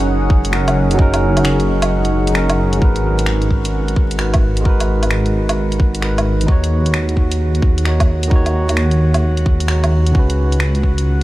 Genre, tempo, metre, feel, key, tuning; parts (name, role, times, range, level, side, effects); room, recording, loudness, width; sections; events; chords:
future garage; 131 BPM; 4/4; swing 65% on 16ths; G# minor; A4 = 440 Hz
tine electric piano; accompaniment; 0.0-11.2 s; C#3 to C#5; -20 LUFS; right 1 dB; sidechain pumping, low-pass filter, tape echo
deep dark ambient pad; sustained chords; 0.0-11.2 s; D#4 to F#5; -25 LUFS; equal; chorus, built-in reverb, sidechain pumping
dark detuned saw bass; bass; 0.0-11.2 s; F#1 to D#2; -17 LUFS; equal; sidechain pumping
drifting glass-harmonics texture; texture; 0.0-11.2 s; C#4 to F#5; -30 LUFS; right 2 dB; chorus, built-in reverb
electronic kick drum; drums; 0.3-11.0 s; -14 LUFS; equal; studio ambience
garage drum kit; drums; 0.4-11.0 s; finger snaps, hi-hat, woodblock; -24 LUFS; equal; studio ambience
digital ambience; vinyl crackle; -13 LUFS; side -16 dB against mid
0.0-2.8 A section; 2.8-11.2 B section
kick drops out 1.9-2.8; filter sweep on tine electric piano 2.8-11.2
0.0 F#6; 2.8 G#m9; 6.5 D#m7; 10.1 C#7sus4